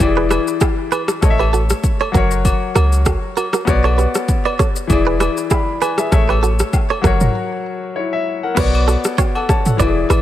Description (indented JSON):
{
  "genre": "afrobeats",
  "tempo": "98 BPM",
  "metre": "4/4",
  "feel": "swing 55% on 16ths",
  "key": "B minor",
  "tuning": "A4 = 440 Hz",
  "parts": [
    { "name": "clear concert grand piano", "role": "accompaniment", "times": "0.0-10.2 s", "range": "E3 to B5", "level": "-20 LUFS", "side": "left 5 dB", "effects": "none" },
    { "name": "clean 808-style bass", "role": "bass", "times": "0.0-10.2 s", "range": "E1 to C#2", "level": "-16 LUFS", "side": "equal", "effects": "none" },
    { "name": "deep house drum kit", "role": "drums", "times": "0.0-10.2 s", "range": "crash cymbal, kick drum, rim click, shaker, toms", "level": "-18 LUFS", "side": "equal", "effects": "overdrive" },
    { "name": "agogo bells and woodblock", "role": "percussion", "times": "0.0-10.2 s", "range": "none", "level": "-27 LUFS", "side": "left 1 dB", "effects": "none" },
    { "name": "direct-recorded clean electric guitar", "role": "riff", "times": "0.2-10.2 s", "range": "E4 to D5", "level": "-22 LUFS", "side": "right 8 dB", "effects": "ping-pong delay" }
  ],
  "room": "digital ambience",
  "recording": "none",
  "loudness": "-14 LUFS",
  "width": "side -12 dB against mid",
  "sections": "0.0-8.6 A section; 8.6-10.2 B section",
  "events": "break 7.3-8.6",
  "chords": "0.0 E7; 1.2 A; 2.1 F#; 3.7 Bmadd9; 4.9 E7; 6.1 A; 7.0 F#; 8.6 Bmadd9"
}